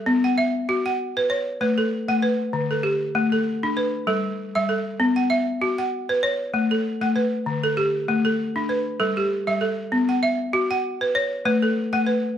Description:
west african traditional; 98 BPM; 4/4; swing 56% on 16ths; A4 = 445 Hz
balafon; solo; 0.0-12.4 s; D3 to F#5; -20 LUFS; equal
moderate recital hall reverb, RT60 1.5 s; close, detailed microphones; -20 LUFS; side -9 dB against mid
0.0-12.4 A section
0.1 B5; 1.3 A; 2.5 D5; 3.8 G; 5.0 B5; 6.2 A; 7.5 D5; 8.7 G; 9.9 B5; 11.1 A

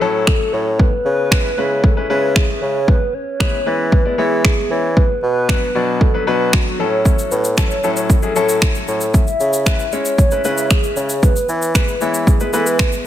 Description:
dance-pop; 115 BPM; 4/4; straight; F# minor; A4 = 439 Hz
hollow clarinet-like synth lead; melody; 0.0-13.1 s; F#4 to E5; -21 LUFS; equal; chorus, ping-pong delay
bright concert grand piano; accompaniment; 0.0-13.1 s; F#3 to D5; -22 LUFS; left 4 dB; sidechain pumping
warm bassoon; bass; 0.0-12.9 s; A2 to E3; -20 LUFS; equal; sidechain pumping
deep house drum kit; drums; 0.3-13.0 s; finger snaps, kick drum, shaker; -15 LUFS; equal; overdrive, soft clipping on snare
digital ambience; dense, heavily limited modern master; -14 LUFS; side -11 dB against mid
0.0-13.1 A section
0.0 F#m7/A; 0.8 C#m7; 2.9 E; 5.0 Bm; 6.8 F#m7/A; 9.1 C#m7; 11.2 E

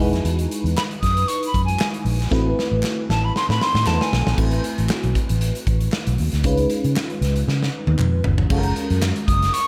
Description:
polished 1980s jazz-funk pop; 116 BPM; 4/4; swing 54% on 16ths; A4 = 440 Hz
FM electric piano with soft pad layer; accompaniment; 0.0-9.7 s; G#3 to B4; -27 LUFS; equal; phaser, ensemble chorus
vintage muted fingered electric bass; bass; 0.0-9.5 s; E1 to C#3; -23 LUFS; equal
modern studio drum kit; drums; 0.0-9.7 s; crash cymbal, hi-hat, kick drum, snare drum, toms; -26 LUFS; equal
breathy silver concert flute; melody; 0.8-4.4, 9.3-9.7 s; G#5 to D#6; -27 LUFS; equal; diffuse ambient delay
group handclap; percussion; 0.8-9.2 s; -38 LUFS; equal
moderate plate reverb, RT60 2.5 s; dreamy mix soaked in reverb; -20 LUFS; mono
0.0-4.4 A section; 4.4-8.5 B section; 8.5-9.7 C section
flute solo 0.0-4.4; drum fill 2.3-4.4, 7.5-8.5
0.0 Emaj9; 2.3 Am6; 6.4 C#7; 8.5 F#maj9

